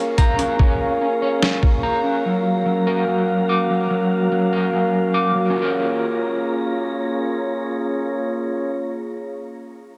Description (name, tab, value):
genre	hip hop, atmospheric cloud-rap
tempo	145 BPM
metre	4/4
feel	half-time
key	Db major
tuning	A4 = 440 Hz
part	glass harmonica	sustained chords	0.0-8.7 s	Bb3 to F5	-24 LUFS	equal	sidechain pumping
part	electric guitar at the edge of break-up	arpeggios	0.0-8.8 s	Gb3 to D6	-24 LUFS	equal	tremolo, low-pass filter, tape echo
part	wind-like tuned noise texture	texture	0.0-8.7 s	F4 to Bb5	-34 LUFS	equal	built-in reverb
part	trip hop sampler-style drum kit	drums	0.2-1.7 s	hi-hat, kick drum, snare drum	-20 LUFS	equal	none
room	moderate huge ambient reverb, RT60 4.9 s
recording	none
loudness	-20 LUFS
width	mono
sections	0.0-5.6 A section; 5.6-8.9 B section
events	none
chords	0.0 Db6; 2.2 Gbmaj7; 5.6 Db6